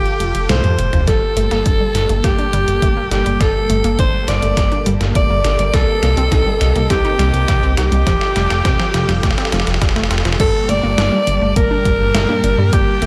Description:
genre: synthwave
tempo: 103 BPM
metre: 4/4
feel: straight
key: G minor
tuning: A4 = 440 Hz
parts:
  - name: raspy alto saxophone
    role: melody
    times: 0.0-13.1 s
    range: G4 to D5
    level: -21 LUFS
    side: equal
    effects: delay, shimmer reverb
  - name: string machine, full ensemble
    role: sustained chords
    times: 0.0-13.1 s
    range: G3 to A5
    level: -27 LUFS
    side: equal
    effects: phaser, ensemble chorus, sidechain pumping, shimmer reverb
  - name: chorused synth bass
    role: bass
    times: 0.0-13.1 s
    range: F1 to G2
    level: -20 LUFS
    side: equal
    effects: tube saturation, sidechain pumping
  - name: detuned 8-bit digital drum machine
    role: drums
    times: 0.1-13.1 s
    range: crash cymbal, hi-hat, snare drum, toms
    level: -24 LUFS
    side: equal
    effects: high-pass filter on hats, high-pass filter on snare, high-pass filter on toms, high-pass filter on cymbals, high-pass filter on room, gated reverb
  - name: soft synth bell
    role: second line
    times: 1.1-13.1 s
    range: G4 to D5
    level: -30 LUFS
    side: equal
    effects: none
  - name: unison pluck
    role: arpeggios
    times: 1.1-13.1 s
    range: F3 to Eb4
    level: -27 LUFS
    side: equal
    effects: delay, shimmer reverb
  - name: electronic kick drum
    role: drums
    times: 1.1-12.8 s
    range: none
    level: -20 LUFS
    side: equal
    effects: none
room: moderate plate reverb, RT60 1.6 s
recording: none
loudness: -15 LUFS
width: mono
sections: 0.0-1.1 A section; 1.1-10.4 B section; 10.4-13.1 C section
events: drum fill 0.5-1.1, 1.1-10.4; band accent 0.5; filter sweep on string machine 1.1-10.4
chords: 0.0 Fadd9; 1.1 Gmadd9; 5.7 Cm7; 8.1 Fadd9; 10.4 Gmadd9

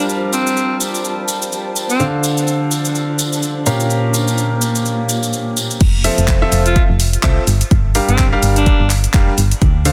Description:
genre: piano house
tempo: 126 BPM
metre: 4/4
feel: swing 58% on 16ths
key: unclear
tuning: A4 = 440 Hz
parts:
  - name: bright alto saxophone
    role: melody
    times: 0.0-2.1, 6.7-8.9 s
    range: C4 to F4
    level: -25 LUFS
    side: equal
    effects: dub echo
  - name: clear grand piano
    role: riff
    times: 0.0-9.9 s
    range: Bb2 to F5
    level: -21 LUFS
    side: equal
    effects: sidechain pumping, dub echo
  - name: tambourine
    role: percussion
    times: 0.0-5.8 s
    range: none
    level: -30 LUFS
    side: equal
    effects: none
  - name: granular cloud pad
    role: texture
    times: 0.0-5.8 s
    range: Bb3 to A5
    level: -27 LUFS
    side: equal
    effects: built-in reverb, sidechain pumping
  - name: house drum kit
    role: drums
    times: 0.1-9.9 s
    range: cabasa, crash cymbal, handclaps, hi-hat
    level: -24 LUFS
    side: equal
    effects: soft clipping on snare
  - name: solid FM bass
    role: bass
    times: 5.8-9.9 s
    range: F1 to D2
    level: -18 LUFS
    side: equal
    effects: sidechain pumping
  - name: electronic kick drum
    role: drums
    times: 5.8-9.7 s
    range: none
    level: -16 LUFS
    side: equal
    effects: none
room: light reverb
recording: dense, heavily limited modern master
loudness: -16 LUFS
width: mono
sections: 0.0-5.8 A section; 5.8-9.9 B section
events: drop 5.8-9.9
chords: 0.0 Gm7; 2.0 Dm7; 3.7 Bbm6; 5.8 Fmaj7; 7.5 Gm7

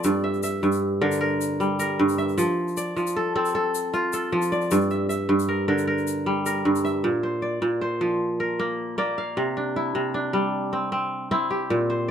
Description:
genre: west african traditional, West African string and xylophone music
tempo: 103 BPM (dotted quarters)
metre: 12/8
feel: straight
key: unclear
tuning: A4 = 440 Hz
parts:
  - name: kora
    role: arpeggios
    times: 0.0-12.1 s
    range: G2 to F5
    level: -22 LUFS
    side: equal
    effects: none
  - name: tube shaker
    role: percussion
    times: 0.0-6.9 s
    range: none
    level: -37 LUFS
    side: left 7 dB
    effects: none
room: light reverb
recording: none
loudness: -22 LUFS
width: side -8 dB against mid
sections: 0.0-7.0 A section; 7.0-12.1 B section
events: none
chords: 0.0 Gm; 2.4 F; 4.7 Gm; 7.0 Bb; 9.4 C

